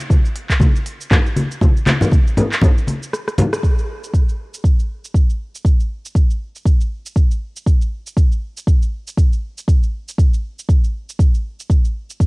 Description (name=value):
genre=house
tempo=119 BPM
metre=4/4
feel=swing 57% on 16ths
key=none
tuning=none
part: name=afro-pop drum kit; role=drums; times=0.0-12.3 s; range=handclaps, hi-hat, rim click, shaker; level=-25 LUFS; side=equal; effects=cassette tape
part: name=electronic kick drum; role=drums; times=0.1-12.3 s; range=none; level=-14 LUFS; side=equal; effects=cassette tape
part: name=congas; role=percussion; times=0.1-3.5 s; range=none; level=-17 LUFS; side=left 1 dB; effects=none
room=little or no reverb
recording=home recording on cassette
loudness=-15 LUFS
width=side -27 dB against mid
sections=0.0-3.6 A section; 3.6-12.3 B section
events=break 3.1-3.6; drum fill 3.1-3.6; band accent 3.5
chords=none